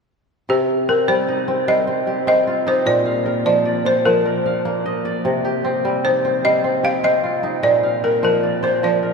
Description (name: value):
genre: west african traditional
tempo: 101 BPM (dotted quarters)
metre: 12/8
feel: straight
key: C minor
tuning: A4 = 440 Hz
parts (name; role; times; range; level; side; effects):
- balafon; melody; 0.5-9.1 s; G4 to F5; -18 LUFS; equal; none
- kora; arpeggios; 0.5-9.1 s; Bb2 to F5; -20 LUFS; equal; none
room: wet cathedral reverb, RT60 6.8 s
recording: in a vast, echoing space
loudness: -16 LUFS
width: side -4 dB against mid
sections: 0.5-9.1 A section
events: none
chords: 0.5 Cm; 2.9 Bb; 5.3 Cm; 7.6 Bb